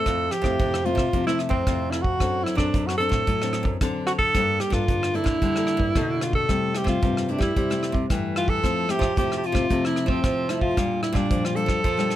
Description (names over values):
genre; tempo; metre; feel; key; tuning
samba and choro; 112 BPM; 4/4; straight; F major; A4 = 441 Hz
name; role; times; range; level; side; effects
warm alto saxophone; melody; 0.0-12.2 s; C4 to A4; -24 LUFS; equal; none
nylon-string guitar; accompaniment; 0.0-12.2 s; G2 to A4; -28 LUFS; left 4 dB; none
nylon-string guitar; bass; 0.1-12.2 s; F2 to G3; -29 LUFS; right 2 dB; none
vintage brush drum kit; drums; 0.1-12.2 s; hi-hat, kick drum, rim click; -26 LUFS; right 1 dB; none
room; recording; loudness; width
little or no reverb; close, detailed microphones; -21 LUFS; side -12 dB against mid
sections
0.1-12.2 A section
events
none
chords
0.1 Fmaj7; 2.2 D7/F#; 4.3 Gmadd9; 6.5 C6; 8.6 Fmaj7; 10.8 Bb6